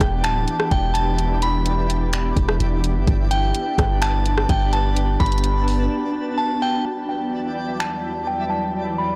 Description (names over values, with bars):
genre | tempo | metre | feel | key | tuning
hip hop, atmospheric cloud-rap | 127 BPM | 4/4 | half-time | E minor | A4 = 440 Hz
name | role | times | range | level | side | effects
glassy synth bell | melody | 0.0-9.2 s | G5 to B5 | -27 LUFS | equal | chorus, low-pass filter, digital delay
shimmering ambient pad | sustained chords | 0.0-9.2 s | E2 to D5 | -29 LUFS | equal | chorus, built-in reverb, sidechain pumping, low-pass filter
long sustained 808-style bass | bass | 0.0-5.9 s | D1 to G1 | -23 LUFS | equal | none
smooth R&B drum kit | drums | 0.0-7.9 s | finger snaps, hi-hat, kick drum, rim click | -25 LUFS | equal | soft clipping on snare
twinkling granular texture | texture | 0.1-9.2 s | D4 to A5 | -35 LUFS | equal | built-in reverb
room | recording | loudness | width
little or no reverb | blown-out, overdriven recording, overdrive | -21 LUFS | mono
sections
0.0-6.9 A section; 6.9-9.2 B section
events
drums muted 5.9-6.9; filter sweep 6.9-9.2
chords
0.0 Em7; 3.1 G; 6.9 Em7